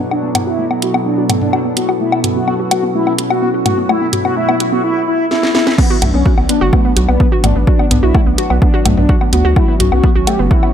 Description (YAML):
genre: melodic techno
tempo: 127 BPM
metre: 4/4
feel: straight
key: B minor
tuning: A4 = 440 Hz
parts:
  - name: warm analog pad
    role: sustained chords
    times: 0.0-10.7 s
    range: B2 to F#4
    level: -23 LUFS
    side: equal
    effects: chorus, sidechain pumping
  - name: warbly dusty pluck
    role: arpeggios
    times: 0.0-10.7 s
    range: A3 to F#4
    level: -20 LUFS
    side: equal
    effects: chorus, sidechain pumping, tape echo
  - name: analog drone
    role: drone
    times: 0.0-4.8 s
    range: B2 to F#3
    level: -28 LUFS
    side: equal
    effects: chorus, sidechain pumping
  - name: deep dark ambient pad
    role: texture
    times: 0.0-10.7 s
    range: B3 to D6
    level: -23 LUFS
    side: equal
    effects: chorus, built-in reverb, sidechain pumping
  - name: expressive synth lead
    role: melody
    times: 0.1-10.7 s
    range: B3 to G4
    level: -18 LUFS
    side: left 1 dB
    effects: analog chorus, sidechain pumping, tape echo
  - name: house drum kit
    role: drums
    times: 0.1-10.7 s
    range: crash cymbal, hi-hat, snare drum, toms, woodblock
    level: -18 LUFS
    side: left 2 dB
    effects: overdrive, sidechain pumping on perc, sidechain pumping on hats, sidechain pumping on toms, sidechain pumping on cymbals
  - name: electronic kick drum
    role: drums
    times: 5.8-10.6 s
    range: none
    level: -13 LUFS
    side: equal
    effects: overdrive
  - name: round analog bass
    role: bass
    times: 6.0-10.5 s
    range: F#1 to D2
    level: -14 LUFS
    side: equal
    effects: sidechain pumping
room: light reverb, digital ambience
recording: none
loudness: -11 LUFS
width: side -9 dB against mid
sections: 0.0-5.8 A section; 5.8-10.7 B section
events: build-up 0.0-5.8; filter sweep on synth arpeggio sound 0.0-5.8; filter sweep on analog synth pad 0.0-5.8; drum fill 5.3-5.8; drop 5.8-10.7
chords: 0.0 Bm; 9.6 F#5